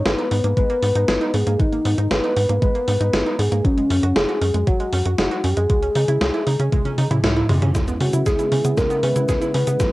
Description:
synthwave; 117 BPM; 4/4; straight; A4 = 440 Hz
soft octave-layered synth lead; melody; 0.0-9.9 s; C#4 to B4; -22 LUFS; left 1 dB; chorus, cassette tape, tape echo
analog pluck; arpeggios; 0.0-9.9 s; F#3 to G#4; -28 LUFS; right 5 dB; chorus, cassette tape, tape echo, plate reverb
tight sequencer bass; bass; 0.0-9.9 s; F#1 to C#3; -21 LUFS; equal; sidechain pumping
gated 80s digital drum machine; drums; 0.1-9.9 s; hi-hat, shaker, snare drum, toms; -23 LUFS; equal; gated reverb, gated reverb snare, overdrive
electronic kick drum; drums; 0.6-9.9 s; -20 LUFS; equal
lush unison pad; sustained chords; 7.7-9.9 s; C#3 to F#4; -28 LUFS; equal; chorus, sidechain pumping
moderate booth ambience, RT60 0.2 s; home recording on cassette; -17 LUFS; side -18 dB against mid
0.0-7.7 A section; 7.7-9.9 B section
drum fill 6.7-7.7, 7.7-9.9; band accent 7.2
0.0 G#madd9; 3.6 F#sus2; 5.7 C#madd9; 7.7 C#m7
0.06 0.57 1.08 | 1.59 2.11 2.62 3.13 | 3.65 4.16 4.67 5.18 | 5.70 6.21 6.72 7.24 | 7.75 8.26 8.77 9.29 | 9.80

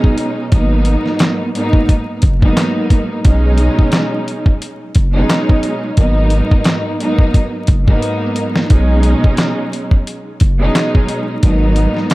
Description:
hip hop, boom-bap hip-hop; 88 BPM; 4/4; swing 56% on 16ths; B major; A4 = 440 Hz
warm studio string section; accompaniment; 0.0-12.1 s; G#2 to D#4; -16 LUFS; right 1 dB; cassette tape, high-pass filter, low-pass filter
dusty soul sampler-style drum kit; drums; 0.0-12.1 s; handclaps, hi-hat, kick drum, snare drum; -12 LUFS; equal
saturated sub bass; bass; 0.5-11.9 s; F#1 to B1; -14 LUFS; equal
digital ambience; dark, warm production, vinyl crackle; -12 LUFS; side -19 dB against mid
0.0-12.1 A section
drum fill 8.0-8.7
0.0 B69; 0.5 G#m7; 3.2 B69; 6.0 G#m7; 8.7 B69; 11.4 G#m7
| 0.52 1.20 1.88 2.57 | 3.25 3.93 4.61 5.29 | 5.97 6.66 7.34 8.02 | 8.70 9.38 10.07 10.75 | 11.43 12.11

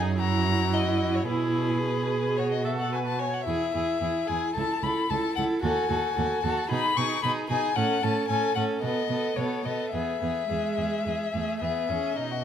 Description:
quick classical-period movement for string quartet; 111 BPM; 4/4; straight; E major; A4 = 442 Hz
warm violin; second line; 0.0-12.4 s; D#4 to A4; -33 LUFS; equal
clear viola; accompaniment; 0.0-12.2 s; G#3 to C#5; -30 LUFS; right 3 dB
warm cello; bass; 0.0-12.4 s; C#2 to B2; -30 LUFS; right 4 dB
rich violin; melody; 0.2-12.4 s; B4 to C#6; -29 LUFS; left 7 dB
wet recital hall reverb, RT60 1.5 s; -24 LUFS; side -9 dB against mid
0.0-12.2 A section
0.2 F#7; 1.3 E/B; 2.4 B5; 3.5 E; 4.6 A/C#; 5.6 D#dim; 6.7 G#m/B; 7.8 A6; 8.8 B7; 9.9 E
0.21 0.75 | 1.29 1.84 2.39 2.93 | 3.48 4.02 4.56 5.10 | 5.64 6.17 6.71 7.23 | 7.76 8.30 8.84 9.38 | 9.94 10.50 11.06 11.62 | 12.17

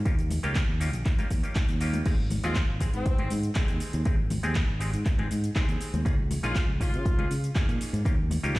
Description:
filtered disco house; 120 BPM; 4/4; straight; Ab major; A4 = 440 Hz
bright clav; accompaniment; 0.0-8.6 s; Ab3 to Ab4; -36 LUFS; equal; phaser, sidechain pumping, low-pass filter
fingered electric bass; bass; 0.0-8.6 s; Ab1 to Db3; -29 LUFS; equal; sidechain pumping, low-pass filter
electronic kick drum; drums; 0.1-8.6 s; -26 LUFS; equal
house drum kit; drums; 0.1-8.6 s; crash cymbal, handclaps, hi-hat, shaker; -37 LUFS; equal; sidechain pumping on hats, sidechain pumping on perc, sidechain pumping on cymbals
egg shaker and congas; percussion; 0.1-8.6 s; -37 LUFS; left 4 dB; sidechain pumping on perc, low-pass filter on perc
bright horn section; melody; 2.4-3.3, 6.4-7.3 s; C4 to F4; -37 LUFS; left 2 dB; sidechain pumping, low-pass filter, dub echo
little or no reverb; played on a big sound system in a bare room, stone room reverb; -24 LUFS; side -19 dB against mid
0.0-8.6 A section
0.1 Eb9; 2.1 Abmaj7; 6.1 Db69; 8.1 Eb9
| 0.06 0.56 1.06 1.56 | 2.06 2.56 3.06 3.56 | 4.06 4.56 5.06 5.56 | 6.06 6.56 7.06 7.56 | 8.06 8.56

